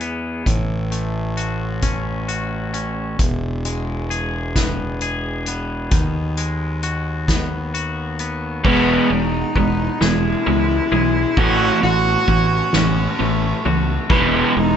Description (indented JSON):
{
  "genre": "post-rock",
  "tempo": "44 BPM (dotted quarters)",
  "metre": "6/8",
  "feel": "straight",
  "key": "E major",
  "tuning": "A4 = 439 Hz",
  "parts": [
    { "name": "twangy electric guitar", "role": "arpeggios", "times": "0.0-14.8 s", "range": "E2 to G#4", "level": "-27 LUFS", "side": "left 3 dB", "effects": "none" },
    { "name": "fuzz fingered electric bass", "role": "bass", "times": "0.0-14.8 s", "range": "E1 to E2", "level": "-23 LUFS", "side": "equal", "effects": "overdrive" },
    { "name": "soft-mallet drum kit", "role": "drums", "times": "0.0-14.8 s", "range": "crash cymbal, hi-hat, kick drum, ride cymbal, snare drum", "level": "-22 LUFS", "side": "equal", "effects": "none" },
    { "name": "crunchy overdriven guitar", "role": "riff", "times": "8.6-14.8 s", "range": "A2 to B3", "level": "-18 LUFS", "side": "right 1 dB", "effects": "spring reverb" },
    { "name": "rich cello", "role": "melody", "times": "9.1-14.8 s", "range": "C#4 to F#4", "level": "-21 LUFS", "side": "equal", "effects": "none" }
  ],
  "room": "moderate studio ambience, RT60 0.4 s",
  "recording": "band playing live in one room, nothing above 7.9 kHz",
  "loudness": "-17 LUFS",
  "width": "side -8 dB against mid",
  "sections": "0.0-8.7 A section; 8.7-14.8 B section",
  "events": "build-up 8.7-14.8",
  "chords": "0.5 A6; 3.2 E; 5.9 G#m7/D#; 8.7 Emaj7; 11.4 A6; 14.1 Emaj7"
}